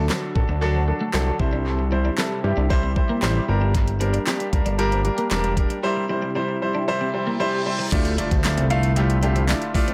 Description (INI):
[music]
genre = dance-pop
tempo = 115 BPM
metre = 4/4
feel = straight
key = unclear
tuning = A4 = 442 Hz
[part]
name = clear baby grand piano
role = accompaniment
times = 0.0-9.9 s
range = F#3 to F5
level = -27 LUFS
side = equal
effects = sidechain pumping, dub echo
[part]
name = sweeping resonant pad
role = sustained chords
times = 0.0-9.9 s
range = C3 to A4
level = -33 LUFS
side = equal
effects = chorus, sidechain pumping
[part]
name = twelve-string electric guitar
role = riff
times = 0.0-9.9 s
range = A3 to E4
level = -34 LUFS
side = equal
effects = analog chorus
[part]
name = fat analog bass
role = bass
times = 0.0-9.5 s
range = E1 to G2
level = -24 LUFS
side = equal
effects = sidechain pumping
[part]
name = smooth R&B drum kit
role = drums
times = 0.1-9.9 s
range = crash cymbal, handclaps, hi-hat, kick drum, snare drum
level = -27 LUFS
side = equal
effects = dub echo
[part]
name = reverse cymbal and impact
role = sound effects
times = 7.2-9.9 s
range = none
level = -37 LUFS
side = equal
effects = none
[sound]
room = light reverb, digital ambience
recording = echo-heavy mix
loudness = -22 LUFS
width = mono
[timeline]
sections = 0.0-7.9 A section; 7.9-9.9 B section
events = reverse cymbal 7.2-7.9; impact 7.9-9.9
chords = 0.0 D; 1.4 C; 3.5 Gm; 5.8 C; 7.9 Dmadd9